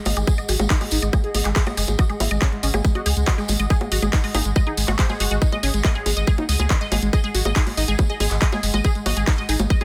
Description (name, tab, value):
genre	psychedelic trance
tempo	140 BPM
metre	4/4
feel	straight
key	unclear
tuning	A4 = 440 Hz
part	warbly tape-like pad	texture	0.0-9.8 s	G#4 to F#5	-36 LUFS	equal	chorus, built-in reverb, sidechain pumping
part	unison lead	melody	0.1-9.8 s	G#3 to G#4	-30 LUFS	equal	phaser, sidechain pumping, dub echo
part	unison pluck	riff	0.1-9.8 s	F#4 to D#5	-32 LUFS	equal	sidechain pumping, dub echo
part	round analog bass	bass	0.1-9.7 s	F#1 to C#2	-25 LUFS	equal	tube saturation
part	drum and bass drum kit	drums	0.1-9.8 s	bongos, handclaps, hi-hat	-28 LUFS	equal	overdrive, small room reverb
part	tambourine	percussion	0.1-9.8 s	none	-35 LUFS	equal	none
part	electronic kick drum	drums	0.3-9.8 s	none	-21 LUFS	equal	overdrive, small room reverb
room	digital ambience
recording	dense, heavily limited modern master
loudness	-20 LUFS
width	mono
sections	0.0-9.8 A section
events	none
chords	0.0 G#5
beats	| 0.27 0.70 1.13 1.56 | 1.99 2.42 2.85 3.27 | 3.70 4.13 4.56 4.99 | 5.42 5.85 6.27 6.70 | 7.13 7.56 7.99 8.42 | 8.85 9.27 9.70